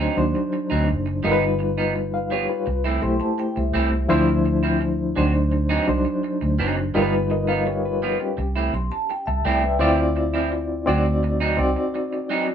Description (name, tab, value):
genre	lush 1970s-style soul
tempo	84 BPM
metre	4/4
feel	straight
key	unclear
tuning	A4 = 441 Hz
part	reed electric piano	accompaniment	0.0-12.5 s	F3 to A5	-22 LUFS	left 1 dB	fast tremolo
part	electric guitar through a small old amp	riff	0.0-12.5 s	F3 to F#4	-26 LUFS	right 4 dB	none
part	vintage muted fingered electric bass	bass	0.0-11.7 s	F#1 to Eb2	-24 LUFS	equal	none
part	vibraphone with soft mallets	texture	3.0-4.1, 8.7-9.8 s	E5 to C6	-30 LUFS	right 2 dB	none
room	moderate studio reverb, RT60 0.5 s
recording	band playing live in one room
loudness	-19 LUFS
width	side -8 dB against mid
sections	0.0-12.5 A section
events	none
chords	0.0 D7b9; 1.2 Gaug7; 2.7 C6; 4.1 Dm9; 5.2 D7b9; 7.0 Gaug7; 8.4 C6; 9.8 Dm9; 10.9 D7b9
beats	0.54 | 1.25 1.96 2.67 3.39 | 4.10 4.81 5.53 6.24 | 6.95 7.66 8.38 9.09 | 9.80 10.51 11.22 11.94